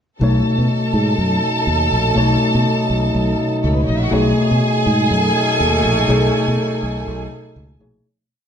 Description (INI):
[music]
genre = disco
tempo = 122 BPM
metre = 4/4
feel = swing 56% on 16ths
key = unclear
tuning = A4 = 445 Hz
[part]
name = warm studio string section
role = second line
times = 0.2-7.8 s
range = A3 to A5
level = -20 LUFS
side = right 1 dB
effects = none
[part]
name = tine electric piano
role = accompaniment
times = 0.2-8.1 s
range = B2 to C#5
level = -19 LUFS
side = left 2 dB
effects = none
[part]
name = dark French horn section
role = sustained chords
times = 0.2-8.0 s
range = C#3 to D#4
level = -25 LUFS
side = right 1 dB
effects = none
[part]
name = fingered electric bass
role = bass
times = 0.2-8.0 s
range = A#1 to B2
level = -19 LUFS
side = equal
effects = tube saturation
[part]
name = dark horn section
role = stabs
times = 5.1-7.8 s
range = F#3 to A4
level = -23 LUFS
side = right 3 dB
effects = none
[sound]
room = moderate stone room reverb, RT60 1.1 s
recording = band playing live in one room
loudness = -14 LUFS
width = side -8 dB against mid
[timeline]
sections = 0.2-8.1 pre-chorus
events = fade-out 6.1-8.1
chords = 0.2 B13